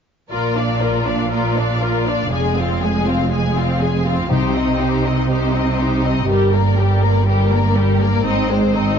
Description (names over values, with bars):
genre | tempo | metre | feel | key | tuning
cinematic | 121 BPM | 4/4 | straight | unclear | A4 = 438 Hz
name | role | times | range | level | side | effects
warm symphonic violin section | melody | 0.3-9.0 s | Bb4 to Ab5 | -27 LUFS | left 7 dB | none
rich studio violin section | second line | 0.3-9.0 s | C4 to D5 | -22 LUFS | left 5 dB | none
clear symphonic viola section | accompaniment | 0.3-9.0 s | G3 to F4 | -22 LUFS | equal | none
rich symphonic double bass section | bass | 0.3-9.0 s | F1 to C2 | -21 LUFS | right 2 dB | none
warm studio cello section | bass | 0.3-9.0 s | F2 to C3 | -20 LUFS | right 2 dB | none
timpani | percussion | 4.3-5.0 s | C3 | -24 LUFS | left 3 dB | none
room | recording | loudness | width
wet scoring stage reverb, RT60 1.7 s | dark, warm production, nothing above 7.5 kHz | -15 LUFS | side -7 dB against mid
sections
0.3-9.0 A section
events
build-up 0.3-9.0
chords
0.3 Bb; 2.3 Fm; 4.3 Cm; 6.3 Gm; 8.2 Ab